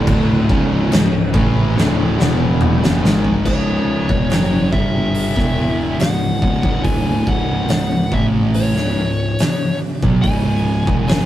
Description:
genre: stoner and doom metal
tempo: 71 BPM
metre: 4/4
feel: straight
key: C# minor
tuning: A4 = 439 Hz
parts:
  - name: distorted electric guitar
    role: riff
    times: 0.0-3.4 s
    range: C#2 to A3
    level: -24 LUFS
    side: equal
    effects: overdrive
  - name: thick fuzz guitar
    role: riff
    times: 0.0-11.3 s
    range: C#2 to A3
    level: -21 LUFS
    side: left 2 dB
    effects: distortion
  - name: thick fuzz guitar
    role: riff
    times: 0.0-11.3 s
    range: C#2 to A3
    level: -22 LUFS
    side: right 3 dB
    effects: distortion
  - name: growling picked electric bass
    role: bass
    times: 0.0-11.3 s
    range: C#1 to B1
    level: -22 LUFS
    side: equal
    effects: overdrive
  - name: oversized low-tuned drum kit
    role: drums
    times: 0.1-11.3 s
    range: crash cymbal, hi-hat, kick drum, snare drum, toms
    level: -18 LUFS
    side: equal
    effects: none
  - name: fuzz lead guitar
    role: melody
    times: 3.5-11.3 s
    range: C#5 to G#5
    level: -24 LUFS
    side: left 1 dB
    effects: distortion
room: moderate booth ambience, RT60 0.2 s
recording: rough rehearsal-room recording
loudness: -14 LUFS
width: side -13 dB against mid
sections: 0.0-3.5 A section; 3.5-11.3 B section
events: drum fill 1.8-3.5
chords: 0.0 C#m

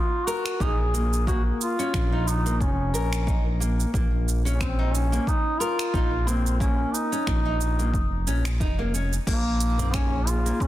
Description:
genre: organic downtempo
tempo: 90 BPM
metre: 4/4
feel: swing 55% on 16ths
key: unclear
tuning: A4 = 440 Hz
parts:
  - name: mellow duduk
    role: melody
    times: 0.0-10.7 s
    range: Bb3 to Ab4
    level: -28 LUFS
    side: equal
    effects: vintage 12-bit sampler grit, digital delay
  - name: nylon-string guitar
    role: arpeggios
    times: 0.3-10.6 s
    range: Bb3 to Bb4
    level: -30 LUFS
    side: left 1 dB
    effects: digital delay
  - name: deep house drum kit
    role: drums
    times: 0.3-10.7 s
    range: crash cymbal, finger snaps, hi-hat, shaker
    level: -34 LUFS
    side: right 4 dB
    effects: soft clipping on snare
  - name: smooth gliding synth bass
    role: bass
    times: 0.6-10.5 s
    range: F1 to Bb1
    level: -25 LUFS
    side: equal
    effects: sidechain pumping
  - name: electronic kick drum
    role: drums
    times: 0.6-10.7 s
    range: none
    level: -26 LUFS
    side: equal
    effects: none
  - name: warbly tape-like pad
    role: sustained chords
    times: 9.7-10.7 s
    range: Bb3 to Ab4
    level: -34 LUFS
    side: equal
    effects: chorus, built-in reverb, sidechain pumping
  - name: tabla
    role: percussion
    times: 9.8-10.6 s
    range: none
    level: -35 LUFS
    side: right 1 dB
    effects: none
room: light reverb, digital ambience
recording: dense, heavily limited modern master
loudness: -22 LUFS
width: side -14 dB against mid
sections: 0.0-10.7 A section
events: none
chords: 0.0 Eb5; 9.3 Bbm

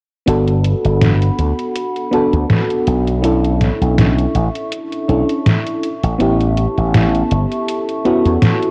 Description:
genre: vaporwave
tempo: 81 BPM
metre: 4/4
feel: swing 55% on 16ths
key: unclear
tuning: A4 = 439 Hz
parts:
  - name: mellow FM electric piano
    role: accompaniment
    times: 0.3-8.7 s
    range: B3 to A4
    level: -20 LUFS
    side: equal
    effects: subtle chorus, analog delay
  - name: warbly tape-like pad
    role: sustained chords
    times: 0.3-8.7 s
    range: A4 to C#6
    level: -29 LUFS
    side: equal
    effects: chorus, built-in reverb
  - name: slap bass with an envelope filter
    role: bass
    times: 0.3-8.4 s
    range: G1 to E2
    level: -18 LUFS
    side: equal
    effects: tube saturation
  - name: detuned 8-bit digital drum machine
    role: drums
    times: 0.3-8.7 s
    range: hi-hat, snare drum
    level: -18 LUFS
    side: equal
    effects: vintage 12-bit sampler grit, studio reverb
room: little or no reverb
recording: worn, warbling old tape, cassette tape, warbly pitch drift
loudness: -16 LUFS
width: mono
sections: 0.3-8.7 A section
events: none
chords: 0.3 Gmaj9; 3.2 Bm11; 5.8 A7

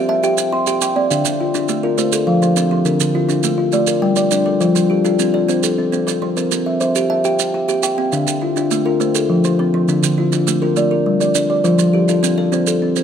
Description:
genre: southern african traditional, mbira-style interlocking cycle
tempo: 136 BPM (dotted quarters)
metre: 12/8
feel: straight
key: F major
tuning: A4 = 438 Hz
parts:
  - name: kalimba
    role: arpeggios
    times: 0.0-13.0 s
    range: D3 to C6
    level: -16 LUFS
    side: left 2 dB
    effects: tape echo
  - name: kalimba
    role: arpeggios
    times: 0.0-13.0 s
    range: D3 to A5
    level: -21 LUFS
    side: right 5 dB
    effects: none
  - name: maracas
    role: percussion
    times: 0.2-13.0 s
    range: none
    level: -24 LUFS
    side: right 12 dB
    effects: none
room: light reverb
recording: close, detailed microphones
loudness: -14 LUFS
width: side -8 dB against mid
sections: 0.0-4.6 A section; 4.6-13.0 B section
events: none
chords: 0.0 C; 1.1 Dm; 2.0 F; 2.9 Dm; 3.7 Gm; 4.6 F; 6.4 C; 8.1 Dm; 9.0 F; 9.9 Dm; 10.8 Gm; 11.6 F

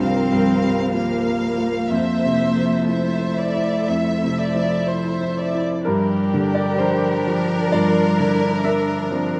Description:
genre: neoclassical piano and strings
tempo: 60-66 BPM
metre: 4/4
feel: rubato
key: G dorian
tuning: A4 = 440 Hz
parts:
  - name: rich chamber violin section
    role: melody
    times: 0.0-9.4 s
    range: Bb4 to F5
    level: -28 LUFS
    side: equal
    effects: none
  - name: rich cello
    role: second line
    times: 0.0-9.4 s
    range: A3 to G4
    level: -26 LUFS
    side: equal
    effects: none
  - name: clear grand piano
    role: accompaniment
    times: 0.0-9.4 s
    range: C2 to E5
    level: -23 LUFS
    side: equal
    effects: none
  - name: rich viola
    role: accompaniment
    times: 0.0-9.4 s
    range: D4 to E5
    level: -30 LUFS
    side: equal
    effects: none
  - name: dark studio string section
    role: sustained chords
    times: 0.0-9.4 s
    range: F3 to D5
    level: -32 LUFS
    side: equal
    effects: none
room: wet scoring stage reverb, RT60 1.9 s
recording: dark, warm production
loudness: -20 LUFS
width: mono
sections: 0.0-5.8 A section; 5.8-9.4 B section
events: none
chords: 0.0 C7sus4; 1.9 Fmaj7; 5.8 Gm7

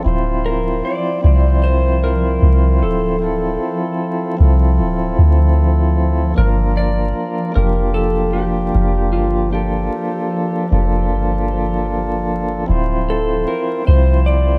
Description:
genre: trip hop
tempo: 76 BPM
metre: 4/4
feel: swing 58% on 16ths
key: G dorian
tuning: A4 = 439 Hz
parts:
  - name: tonewheel organ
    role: accompaniment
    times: 0.0-14.6 s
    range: Bb3 to C5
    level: -23 LUFS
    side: equal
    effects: stopped rotary speaker, tremolo
  - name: soft 808-style bass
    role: bass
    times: 0.0-14.6 s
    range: D1 to D2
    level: -18 LUFS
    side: equal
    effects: tube saturation
  - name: wind-like tuned noise texture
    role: texture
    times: 0.0-14.6 s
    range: F3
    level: -28 LUFS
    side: equal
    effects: built-in reverb
  - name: clean lap steel guitar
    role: melody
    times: 0.5-14.6 s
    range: F4 to D5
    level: -26 LUFS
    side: equal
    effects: tape echo
room: digital ambience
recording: vinyl crackle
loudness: -17 LUFS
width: mono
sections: 0.0-14.6 A section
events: none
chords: 0.1 Dm7; 6.4 Gm7; 12.7 Dm7

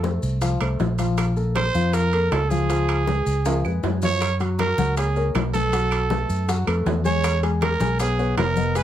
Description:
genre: Afro-Cuban jazz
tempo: 158 BPM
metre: 4/4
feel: straight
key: unclear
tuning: A4 = 438 Hz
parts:
  - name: growling trumpet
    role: melody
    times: 0.0-8.8 s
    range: Ab4 to Db5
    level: -24 LUFS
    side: right 4 dB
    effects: none
  - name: dark concert grand piano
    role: accompaniment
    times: 0.0-8.8 s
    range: F3 to G#5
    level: -27 LUFS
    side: left 4 dB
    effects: none
  - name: fingered electric bass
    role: bass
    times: 0.0-8.8 s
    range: E#1 to Gb2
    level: -23 LUFS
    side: equal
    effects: none
  - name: bongos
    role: percussion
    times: 0.0-8.8 s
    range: none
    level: -33 LUFS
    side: left 7 dB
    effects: none
  - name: congas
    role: percussion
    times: 0.0-8.8 s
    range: none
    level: -30 LUFS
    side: left 5 dB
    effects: none
  - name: maracas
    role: percussion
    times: 0.0-8.8 s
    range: none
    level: -40 LUFS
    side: left 4 dB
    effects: none
  - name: timbales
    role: percussion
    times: 0.0-8.8 s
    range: none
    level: -31 LUFS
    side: right 6 dB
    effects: none
  - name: claves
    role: percussion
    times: 0.6-8.6 s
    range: none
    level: -36 LUFS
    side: right 7 dB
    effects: none
room: light reverb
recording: none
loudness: -19 LUFS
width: side -11 dB against mid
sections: 0.0-4.2 A section; 4.2-8.8 B section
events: drum fill 3.5-4.2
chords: 0.0 F; 1.2 Bb5; 2.7 Db7; 4.2 F#; 5.7 B5; 7.2 E6

